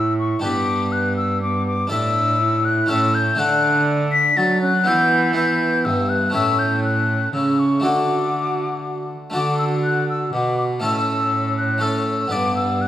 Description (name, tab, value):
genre	classical, renaissance-style consort dance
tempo	122 BPM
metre	3/4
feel	straight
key	D major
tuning	A4 = 440 Hz
part	hollow concert flute	melody	0.0-12.9 s	C#6 to B6	-21 LUFS	left 3 dB	none
part	dark trombone	accompaniment	0.0-12.9 s	B3 to F#4	-26 LUFS	right 1 dB	none
part	harpsichord	accompaniment	0.0-12.9 s	G2 to D5	-24 LUFS	left 1 dB	none
part	rich cello	bass	0.0-12.9 s	G2 to F#3	-23 LUFS	right 2 dB	none
room	wet recital hall reverb, RT60 1.4 s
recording	none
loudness	-17 LUFS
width	side -12 dB against mid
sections	0.0-9.3 A section; 9.3-12.9 A section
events	none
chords	0.4 G; 1.9 Asus4; 2.9 A; 3.4 D; 4.9 Em; 6.3 A; 7.8 D; 10.8 A; 12.3 G